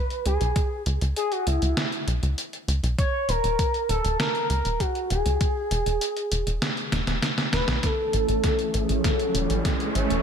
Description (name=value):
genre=synthwave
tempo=99 BPM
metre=4/4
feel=straight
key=unclear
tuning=A4 = 440 Hz
part: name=expressive portamento lead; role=melody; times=0.0-10.2 s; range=E4 to C#5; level=-27 LUFS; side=equal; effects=wide subtle chorus, ping-pong delay
part: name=detuned 8-bit digital drum machine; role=drums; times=0.1-10.2 s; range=hi-hat, snare drum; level=-28 LUFS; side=equal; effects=overdrive
part: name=tight sequencer bass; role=bass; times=0.3-10.2 s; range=D#1 to C#2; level=-25 LUFS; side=equal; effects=sidechain pumping
part: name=electronic kick drum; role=drums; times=0.6-9.8 s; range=none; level=-25 LUFS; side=equal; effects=overdrive
part: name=lush unison pad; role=sustained chords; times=7.8-10.2 s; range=E3 to C#4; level=-29 LUFS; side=equal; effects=chorus, vintage 12-bit sampler grit, sidechain pumping
part: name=riser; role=sound effects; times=8.5-10.2 s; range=none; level=-30 LUFS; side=right 3 dB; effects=none
room=moderate lush hall reverb, RT60 1.6 s, digital ambience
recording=big arena sound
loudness=-22 LUFS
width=side -7 dB against mid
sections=0.0-7.8 A section; 7.8-10.2 B section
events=drum fill 6.9-7.8, 7.8-10.2; riser 8.5-10.2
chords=0.0 C#m7; 3.0 D#5; 5.4 E; 7.8 A